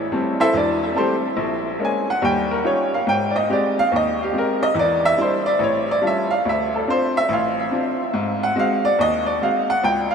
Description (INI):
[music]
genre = solo jazz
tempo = 142 BPM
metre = 4/4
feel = swing 67% on 8ths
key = unclear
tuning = A4 = 440 Hz
[part]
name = bright upright piano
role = solo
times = 0.0-10.1 s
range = E1 to Ab5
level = -18 LUFS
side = equal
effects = tape echo
[sound]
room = wet huge ambient reverb, RT60 8.8 s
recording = dreamy mix soaked in reverb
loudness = -18 LUFS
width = side -6 dB against mid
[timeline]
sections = 0.0-10.1 A section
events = upright piano solo 0.0-10.1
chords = 0.0 Am7; 1.4 Bbm7; 2.2 Eb9; 3.1 Abmaj7; 4.8 Em7; 5.6 A7b13; 6.4 Dm7; 8.1 Ab7